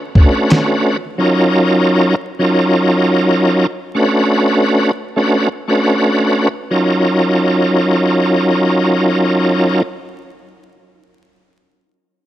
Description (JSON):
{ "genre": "hip hop, boom-bap hip-hop", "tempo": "87 BPM", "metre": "4/4", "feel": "swing 55% on 16ths", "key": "Eb minor", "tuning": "A4 = 436 Hz", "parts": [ { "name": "bright tonewheel organ", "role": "accompaniment", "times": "0.2-9.8 s", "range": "Gb3 to B4", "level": "-12 LUFS", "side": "equal", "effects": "overdrive, chorus vibrato, fast rotary speaker, high-pass filter, low-pass filter" }, { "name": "dusty soul sampler-style drum kit", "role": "drums", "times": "0.2-0.7 s", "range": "hi-hat, kick drum, snare drum", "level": "-10 LUFS", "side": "equal", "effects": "none" } ], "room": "light reverb, digital ambience", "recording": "dark, warm production, vinyl crackle", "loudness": "-12 LUFS", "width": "side -13 dB against mid", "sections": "0.0-6.7 A section; 6.7-9.5 B section", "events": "none", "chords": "0.0 Bm9; 1.2 Ebm9; 4.0 Bm9; 6.7 Ebm9" }